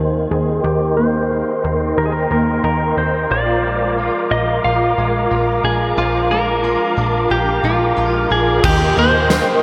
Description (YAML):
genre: dream pop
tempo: 90 BPM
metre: 4/4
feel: straight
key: Eb major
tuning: A4 = 442 Hz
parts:
  - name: clean electric guitar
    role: melody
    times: 0.0-9.6 s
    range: F4 to F5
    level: -21 LUFS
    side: equal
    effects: low-pass filter, analog delay
  - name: mellow tonewheel organ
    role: sustained chords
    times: 0.0-9.6 s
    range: Bb4 to D6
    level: -23 LUFS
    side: equal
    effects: chorus vibrato, fast rotary speaker, low-pass filter
  - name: fingerpicked twelve-string acoustic guitar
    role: arpeggios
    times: 0.0-9.6 s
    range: Eb3 to G4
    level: -23 LUFS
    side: equal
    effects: ensemble chorus, low-pass filter, analog delay
  - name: plucky analog bass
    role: bass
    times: 0.0-9.4 s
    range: Bb1 to Eb2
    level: -23 LUFS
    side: equal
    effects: none
  - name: huge arena drum kit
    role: drums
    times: 8.6-9.5 s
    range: crash cymbal, hi-hat, kick drum, snare drum, tambourine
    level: -21 LUFS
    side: equal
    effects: none
  - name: glockenspiel with hard plastic mallets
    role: texture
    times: 8.6-9.6 s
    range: Eb6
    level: -32 LUFS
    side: equal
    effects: analog delay
room: wet huge ambient reverb, RT60 7.3 s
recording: dreamy mix soaked in reverb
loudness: -17 LUFS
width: mono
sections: 0.0-8.6 A section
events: filter sweep 0.0-8.6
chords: 0.0 Eb6; 3.3 Bb7; 8.6 Eb6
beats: | 0.64 1.31 1.97 2.64 | 3.31 3.97 4.64 5.31 | 5.97 6.64 7.31 7.97 | 8.64 9.31